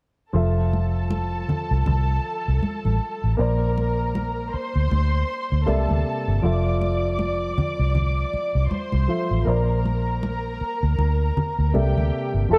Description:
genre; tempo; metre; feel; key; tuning
lush 1970s-style soul; 79 BPM; 4/4; swing 58% on 16ths; F major; A4 = 441 Hz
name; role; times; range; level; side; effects
muted studio string section; second line; 0.3-12.5 s; G4 to D6; -32 LUFS; equal; none
warm grand piano; accompaniment; 0.3-12.6 s; C3 to A5; -30 LUFS; equal; none
vintage muted fingered electric bass; bass; 0.3-12.6 s; F1 to D2; -24 LUFS; equal; none
congas; percussion; 0.7-12.1 s; none; -32 LUFS; equal; none
expressive portamento lead; melody; 12.5-12.6 s; A4; -16 LUFS; equal; chorus
room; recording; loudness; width
light reverb; dark, warm production; -23 LUFS; mono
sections
0.3-12.5 A section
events
none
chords
0.3 Fmaj7; 3.4 Bbadd9; 5.7 C13; 6.4 Fmaj7; 9.5 Bbadd9; 11.7 C13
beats
| 0.34 1.10 1.86 2.63 | 3.39 4.15 4.91 5.67 | 6.43 7.19 7.95 8.71 | 9.47 10.23 10.99 11.75 | 12.51

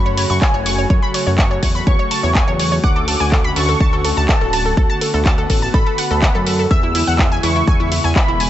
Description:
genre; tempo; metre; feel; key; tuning
progressive house; 124 BPM; 4/4; straight; unclear; A4 = 442 Hz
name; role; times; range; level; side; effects
plucky unison lead; melody; 0.0-8.5 s; G#5 to E6; -23 LUFS; equal; analog chorus, sidechain pumping, dub echo
airy breathy pad; sustained chords; 0.0-8.5 s; C#3 to F#4; -24 LUFS; equal; chorus, sidechain pumping
fat analog bass; bass; 0.0-8.5 s; D1 to F#2; -20 LUFS; equal; sidechain pumping
analog pluck; arpeggios; 0.1-8.5 s; E4 to C#6; -22 LUFS; equal; chorus, sidechain pumping, dub echo
deep house drum kit; drums; 0.2-8.5 s; handclaps, hi-hat; -22 LUFS; left 1 dB; none
electronic kick drum; drums; 0.4-8.3 s; none; -16 LUFS; equal; none
room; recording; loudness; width
little or no reverb; nothing above 8.0 kHz; -13 LUFS; side -12 dB against mid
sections
0.0-8.5 A section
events
none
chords
0.0 F#m; 2.8 Dmaj7; 6.7 E6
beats
0.42 | 0.90 1.39 1.87 2.35 | 2.84 3.32 3.80 4.29 | 4.77 5.26 5.74 6.22 | 6.71 7.19 7.67 8.16

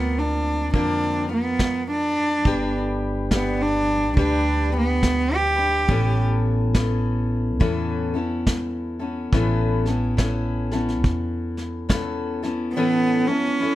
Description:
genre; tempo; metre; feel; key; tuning
acoustic folk duo or small band; 70 BPM; 4/4; swing 62% on 8ths; unclear; A4 = 445 Hz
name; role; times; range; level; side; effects
warm cello; melody; 0.0-6.2, 12.7-13.8 s; B3 to G4; -22 LUFS; right 2 dB; plate reverb
picked steel-string acoustic guitar; accompaniment; 0.0-13.8 s; A2 to B4; -26 LUFS; left 3 dB; none
upright bass; bass; 0.0-12.7 s; G1 to F2; -25 LUFS; right 1 dB; none
vintage brush drum kit; drums; 0.7-12.5 s; kick drum, snare drum; -22 LUFS; equal; none
room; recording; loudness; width
light reverb; none; -20 LUFS; side -15 dB against mid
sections
0.0-9.3 A section; 9.3-12.8 B section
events
cello solo 0.0-9.3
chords
0.0 Bbadd9/D; 2.5 G; 5.9 Aadd9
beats
0.74 1.60 | 2.46 3.32 4.18 5.04 | 5.89 6.75 7.61 8.47 | 9.33 10.18 11.04 11.90 | 12.75 13.61

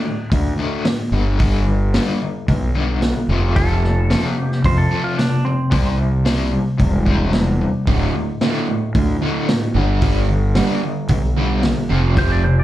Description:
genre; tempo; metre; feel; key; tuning
classic rock; 112 BPM; 4/4; straight; unclear; A4 = 441 Hz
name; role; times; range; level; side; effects
raw garage guitar; riff; 0.0-12.6 s; D2 to C4; -21 LUFS; left 3 dB; overdrive, tremolo, slapback echo
fuzz fingered electric bass; bass; 0.3-12.6 s; D1 to F2; -18 LUFS; equal; overdrive
vintage drum kit; drums; 0.3-12.3 s; hi-hat, kick drum, snare drum; -21 LUFS; equal; none
clean lap steel guitar; second line; 3.6-6.0, 12.2-12.6 s; C4 to D5; -24 LUFS; right 1 dB; slapback echo, plate reverb
overdriven semi-hollow guitar; riff; 7.9-12.6 s; D2 to G3; -23 LUFS; right 9 dB; slapback echo
room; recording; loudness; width
little or no reverb; live gig heard through the venue's PA, club reverb; -15 LUFS; side -14 dB against mid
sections
0.0-12.6 A section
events
none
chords
0.0 D5; 1.1 G; 3.3 F; 5.7 C; 7.9 D5; 9.7 G; 11.9 F5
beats
0.31 0.85 | 1.39 1.93 2.48 3.02 | 3.56 4.09 4.63 5.17 | 5.71 6.25 6.79 7.33 | 7.86 8.40 8.94 9.48 | 10.01 10.55 11.09 11.63 | 12.16

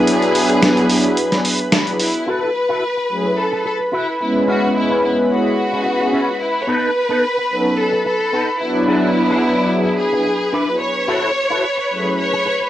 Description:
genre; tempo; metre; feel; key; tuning
nu-disco, nu disco; 109 BPM; 4/4; straight; F# minor; A4 = 440 Hz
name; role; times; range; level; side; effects
rich studio violin section; melody; 0.0-12.7 s; E4 to C#5; -20 LUFS; equal; cassette tape, tape echo
warm analog pad; accompaniment; 0.0-12.1 s; F#3 to B4; -18 LUFS; equal; chorus, cassette tape
lush unison pad; sustained chords; 0.0-12.7 s; B4 to B5; -23 LUFS; equal; chorus, cassette tape
dusty soul sampler-style drum kit; drums; 0.1-2.2 s; hi-hat, snare drum; -18 LUFS; equal; none
electric guitar with an envelope filter; riff; 2.3-12.6 s; B3 to B4; -22 LUFS; left 1 dB; ensemble chorus, low-pass filter, cassette tape
room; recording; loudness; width
moderate studio reverb, RT60 0.6 s; home recording on cassette; -15 LUFS; side -12 dB against mid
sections
0.0-2.3 A section; 2.3-12.7 B section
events
band accent 1.7; filter sweep on clean electric guitar 2.3-12.7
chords
0.1 E7; 2.3 F#m7; 4.5 C#m7; 6.7 B7; 8.9 E7; 11.1 F#m7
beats
| 0.07 0.62 1.17 1.73 | 2.27 2.83 3.38 3.93 | 4.48 5.03 5.58 6.13 | 6.68 7.23 7.78 8.33 | 8.88 9.43 9.98 10.53 | 11.08 11.63 12.18

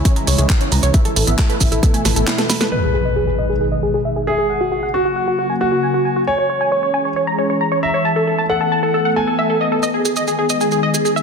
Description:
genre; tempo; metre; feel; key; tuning
uplifting trance; 135 BPM; 4/4; straight; G# minor; A4 = 440 Hz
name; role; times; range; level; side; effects
lush unison pad; sustained chords; 0.0-11.2 s; B2 to A4; -22 LUFS; left 1 dB; chorus, sidechain pumping
tight sequencer bass; bass; 0.0-2.2 s; A1 to C#2; -17 LUFS; equal; sidechain pumping
supersaw stab; melody; 0.1-11.2 s; F#4 to B5; -19 LUFS; equal; sidechain pumping, low-pass filter, dub echo
analog pluck; arpeggios; 0.1-2.6 s; G#3 to C#5; -26 LUFS; right 5 dB; chorus, sidechain pumping, digital delay
electronic kick drum; drums; 0.1-1.9 s; none; -15 LUFS; equal; none
house drum kit; drums; 0.1-2.7 s; handclaps, hi-hat, snare drum; -22 LUFS; right 1 dB; sidechain pumping on hats, low-pass filter on hats, soft clipping on snare, low-pass filter on snare, low-pass filter on room
maracas; percussion; 0.1-2.7, 9.8-11.2 s; none; -25 LUFS; right 5 dB; none
warm concert grand piano; second line; 2.7-9.7 s; F#4 to G#5; -21 LUFS; left 1 dB; digital delay
impact; sound effects; 2.7-4.5 s; none; -23 LUFS; equal; none
room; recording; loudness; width
moderate lush hall reverb, RT60 2.1 s; dense, heavily limited modern master; -15 LUFS; side -5 dB against mid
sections
0.0-2.7 A section; 2.7-11.2 B section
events
drum fill 2.1-2.7; impact 2.7-4.5; filter sweep on supersaw synth 2.7-11.2; filter sweep on analog synth pad 2.7-11.2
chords
0.0 C#m; 0.9 Asus2; 2.7 G#m; 4.5 F#; 6.3 C#m; 8.1 Asus2; 9.8 G#m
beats
0.05 0.50 | 0.94 1.39 1.83 2.27 | 2.72 3.16 3.61 4.05 | 4.50 4.94 5.38 5.83 | 6.27 6.72 7.16 7.61 | 8.05 8.50 8.94 9.38 | 9.83 10.27 10.72 11.16

